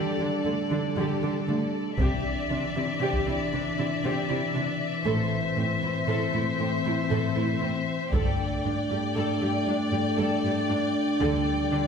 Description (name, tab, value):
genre	cinematic, epic orchestral film score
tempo	78 BPM (dotted quarters)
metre	12/8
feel	straight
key	A minor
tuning	A4 = 440 Hz
part	rich chamber violin section	melody	0.0-11.9 s	D5 to G5	-33 LUFS	left 6 dB	none
part	clear symphonic violin section	second line	0.0-11.9 s	A4 to D5	-33 LUFS	left 2 dB	none
part	rich studio viola section	accompaniment	0.0-11.8 s	A3 to A4	-34 LUFS	right 3 dB	none
part	mellow French horn section	sustained chords	0.0-11.9 s	E3 to D4	-29 LUFS	left 1 dB	none
part	clear symphonic cello section	bass	0.2-11.8 s	G2 to D3	-31 LUFS	right 2 dB	none
part	rich symphonic double bass section	bass	2.0-11.4 s	G1 to D2	-32 LUFS	right 1 dB	none
part	taiko ensemble	drums	2.0-3.4, 8.1-9.1 s	none	-30 LUFS	equal	none
room	wet scoring stage reverb, RT60 1.5 s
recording	heard from further back in the room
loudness	-24 LUFS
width	side -6 dB against mid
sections	0.0-11.9 A section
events	build-up 0.0-11.9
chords	0.0 Dsus4; 2.0 Cadd9; 5.1 Am; 8.1 Gsus2; 11.2 Dsus4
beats	0.45 1.22 | 1.98 2.75 3.52 4.29 | 5.06 5.82 6.59 7.36 | 8.13 8.89 9.66 10.43 | 11.20